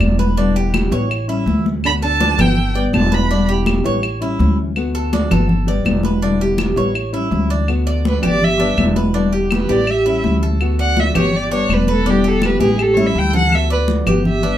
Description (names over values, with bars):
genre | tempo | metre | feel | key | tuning
latin, Cuban son and guajira | 164 BPM | 4/4 | straight | D major | A4 = 439 Hz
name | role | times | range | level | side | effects
nylon-string guitar | accompaniment | 0.0-14.6 s | B2 to G4 | -21 LUFS | left 4 dB | none
Cuban tres | arpeggios | 0.0-14.6 s | D4 to D5 | -22 LUFS | right 2 dB | none
upright bass | bass | 0.0-14.6 s | E1 to D2 | -19 LUFS | equal | none
claves | percussion | 0.0-14.2 s | none | -26 LUFS | left 2 dB | none
congas | percussion | 0.0-14.6 s | none | -20 LUFS | left 1 dB | none
warm violin | melody | 1.9-3.5, 8.1-14.6 s | G4 to B5 | -20 LUFS | right 2 dB | none
nylon-string guitar | second line | 1.9-3.5 s | B3 to D4 | -27 LUFS | right 4 dB | none
room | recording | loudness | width
moderate small room reverb, RT60 0.5 s | minimal, uncompressed stereo recording | -14 LUFS | side -11 dB against mid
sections
0.0-7.7 A section; 7.7-14.6 B section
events
violin solo 7.7-14.6; drum fill 12.6-13.5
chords
0.4 Em7; 1.1 A7; 1.8 D6; 2.6 Gadd9; 3.3 Em7; 4.0 A7; 4.8 D6; 5.5 Gadd9; 6.2 Em7; 7.0 A7; 7.7 D6; 8.4 G; 9.1 Em7; 9.9 A7; 10.6 D6; 11.3 G; 12.1 Em7; 12.8 A7; 13.5 D6